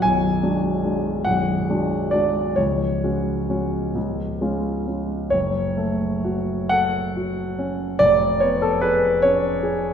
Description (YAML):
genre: classical, romantic nocturne for solo piano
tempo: 41-50 BPM (dotted quarters)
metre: 12/8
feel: rubato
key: F# minor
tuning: A4 = 440 Hz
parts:
  - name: warm concert grand piano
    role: solo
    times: 0.0-9.9 s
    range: B0 to G#5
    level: -19 LUFS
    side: equal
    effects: none
room: wet recital hall reverb, RT60 1.4 s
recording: none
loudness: -19 LUFS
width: side -8 dB against mid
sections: 0.0-5.3 A section; 5.3-9.9 B section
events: none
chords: 0.0 G#m7b5/B; 2.6 C#sus4; 4.0 C#; 5.3 F#m; 8.0 C#7/E#